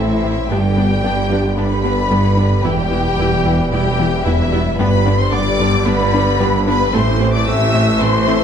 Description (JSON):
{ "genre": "cinematic, hybrid orchestral and electronic film score", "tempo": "112 BPM", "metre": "4/4", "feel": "straight", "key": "unclear", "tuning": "A4 = 440 Hz", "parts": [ { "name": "warm symphonic violin section", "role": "melody", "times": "0.0-8.4 s", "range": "E5 to E6", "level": "-21 LUFS", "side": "left 1 dB", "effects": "none" }, { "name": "warm symphonic violin section", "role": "second line", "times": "0.0-8.4 s", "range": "E4 to E5", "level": "-23 LUFS", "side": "left 4 dB", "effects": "none" }, { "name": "rich symphonic viola section", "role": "accompaniment", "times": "0.0-8.4 s", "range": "A3 to E4", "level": "-25 LUFS", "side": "right 2 dB", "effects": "none" }, { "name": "clear trombone section", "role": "sustained chords", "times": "0.0-8.4 s", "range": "D3 to C4", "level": "-25 LUFS", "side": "right 4 dB", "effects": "none" }, { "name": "mellow French horn section", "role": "sustained chords", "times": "0.0-8.4 s", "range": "A3 to G4", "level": "-25 LUFS", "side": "left 4 dB", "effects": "none" }, { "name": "tight sequenced synth", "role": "arpeggios", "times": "0.0-8.4 s", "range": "E3 to E4", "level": "-24 LUFS", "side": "left 2 dB", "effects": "chorus" }, { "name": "smooth synth bass", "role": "riff", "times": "0.0-8.4 s", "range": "E2 to A3", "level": "-22 LUFS", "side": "left 3 dB", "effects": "none" }, { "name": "phased detuned saw bass", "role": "bass", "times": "0.0-8.4 s", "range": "E1 to A1", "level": "-25 LUFS", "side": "equal", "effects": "phaser" }, { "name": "rich symphonic cello section", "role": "bass", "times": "0.0-8.4 s", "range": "E2 to A2", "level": "-21 LUFS", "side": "right 3 dB", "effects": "none" }, { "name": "rich symphonic double bass section", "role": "bass", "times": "0.0-8.4 s", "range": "E1 to A1", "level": "-22 LUFS", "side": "right 3 dB", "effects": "none" } ], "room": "wet recital hall reverb, RT60 1.6 s", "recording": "dark, warm production", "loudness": "-13 LUFS", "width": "side -8 dB against mid", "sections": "0.0-8.4 A section", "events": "none", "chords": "0.0 Am; 0.5 G; 2.7 Em; 4.8 G; 6.9 Am" }